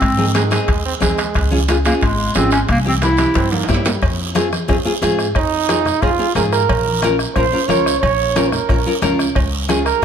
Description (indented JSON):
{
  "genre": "latin, cumbia",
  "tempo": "180 BPM",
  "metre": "4/4",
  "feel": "straight",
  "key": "F minor",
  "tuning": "A4 = 440 Hz",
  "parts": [
    { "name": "warm clarinet", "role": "melody", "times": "0.0-3.5 s", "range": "Ab3 to E4", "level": "-20 LUFS", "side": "equal", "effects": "none" },
    { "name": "upright bass", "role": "bass", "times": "0.0-10.0 s", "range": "Ab1 to Ab2", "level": "-21 LUFS", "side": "equal", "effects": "none" },
    { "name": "bombo", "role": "percussion", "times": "0.0-10.0 s", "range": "none", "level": "-22 LUFS", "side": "left 2 dB", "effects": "none" },
    { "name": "congas", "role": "percussion", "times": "0.0-9.9 s", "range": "none", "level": "-26 LUFS", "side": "left 2 dB", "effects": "none" },
    { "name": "guiro", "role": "percussion", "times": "0.0-10.0 s", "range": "none", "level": "-27 LUFS", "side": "right 7 dB", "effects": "none" },
    { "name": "timbales and cowbell", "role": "percussion", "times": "0.0-9.9 s", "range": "none", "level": "-26 LUFS", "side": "right 5 dB", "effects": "none" },
    { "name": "bright trombone", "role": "second line", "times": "0.2-10.0 s", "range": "Eb3 to Db5", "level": "-20 LUFS", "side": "right 7 dB", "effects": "none" },
    { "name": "nylon-string guitar", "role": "accompaniment", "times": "0.2-10.0 s", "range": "C4 to Bb4", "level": "-20 LUFS", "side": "left 1 dB", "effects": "none" }
  ],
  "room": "moderate plate reverb, RT60 2.9 s",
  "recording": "none",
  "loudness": "-14 LUFS",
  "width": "side -8 dB against mid",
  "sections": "0.0-4.0 A section; 4.0-10.0 B section",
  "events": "drum fill 3.4-4.0; trombone solo 4.0-10.0",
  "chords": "0.0 Ab; 1.4 Db; 2.7 C; 4.0 Fm; 6.7 Bbm; 9.4 Db",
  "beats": "| 0.02 0.35 0.69 1.02 | 1.35 1.69 2.02 2.36 | 2.69 3.02 3.36 3.69 | 4.03 4.36 4.69 5.03 | 5.36 5.69 6.03 6.36 | 6.69 7.03 7.36 7.69 | 8.03 8.36 8.70 9.03 | 9.36 9.70 10.03"
}